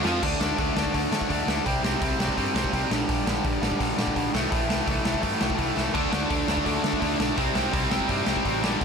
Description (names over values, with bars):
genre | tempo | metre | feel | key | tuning
punk rock | 168 BPM | 4/4 | straight | unclear | A4 = 440 Hz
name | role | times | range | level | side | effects
crunchy overdriven guitar | riff | 0.0-8.8 s | G2 to F4 | -28 LUFS | right 15 dB | none
distorted electric guitar | riff | 0.0-0.2, 5.9-8.8 s | G2 to F4 | -29 LUFS | equal | overdrive
overdriven semi-hollow guitar | riff | 0.0-8.8 s | G2 to F4 | -28 LUFS | left 14 dB | none
picked electric bass | bass | 0.0-8.8 s | A1 to D3 | -32 LUFS | equal | none
raw garage drum kit | drums | 0.0-8.8 s | crash cymbal, hi-hat, kick drum, snare drum | -28 LUFS | equal | none
room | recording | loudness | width
little or no reverb | none | -22 LUFS | side -6 dB against mid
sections
0.2-8.8 A section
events
drum fill 0.0, 5.8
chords
0.2 D5; 1.7 C5; 2.9 Gm/Bb; 4.3 Am; 5.9 D5; 7.4 C5